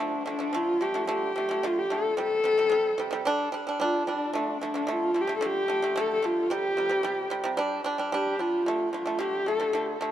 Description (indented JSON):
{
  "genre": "mongolian traditional, Mongolian folk",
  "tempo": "111 BPM",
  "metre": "4/4",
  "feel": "straight",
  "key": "unclear",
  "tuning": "A4 = 438 Hz",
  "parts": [
    { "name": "warm horsehead fiddle", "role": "melody", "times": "0.0-9.7 s", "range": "D4 to A4", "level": "-27 LUFS", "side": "left 1 dB", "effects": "tape echo" },
    { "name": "pipa", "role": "arpeggios", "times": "0.0-10.1 s", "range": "C3 to D4", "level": "-29 LUFS", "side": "right 2 dB", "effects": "none" }
  ],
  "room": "moderate huge ambient reverb, RT60 4.9 s",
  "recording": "none",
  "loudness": "-25 LUFS",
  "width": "side -11 dB against mid",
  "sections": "0.0-10.1 A section",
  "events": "none",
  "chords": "0.0 D5; 2.2 C5; 3.3 G5; 4.3 D5; 6.5 C5; 7.6 G5; 8.7 D5"
}